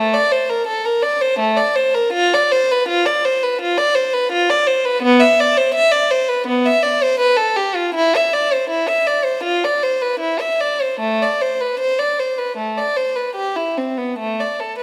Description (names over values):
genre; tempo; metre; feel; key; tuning
classical, baroque-style suite movement for unaccompanied violin; 70-85 BPM; 4/4; rubato; A minor; A4 = 440 Hz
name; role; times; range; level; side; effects
rich violin; solo; 0.0-14.8 s; A3 to E5; -17 LUFS; equal; none
room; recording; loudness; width
moderate scoring stage reverb, RT60 1.6 s; none; -17 LUFS; mono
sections
0.0-14.2 A section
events
none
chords
none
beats
0.67 1.39 | 2.13 2.88 3.61 4.33 | 5.03 5.75 6.46 7.18 | 7.94 8.69 9.43 10.19 | 10.99 11.78 12.56 13.35 | 14.18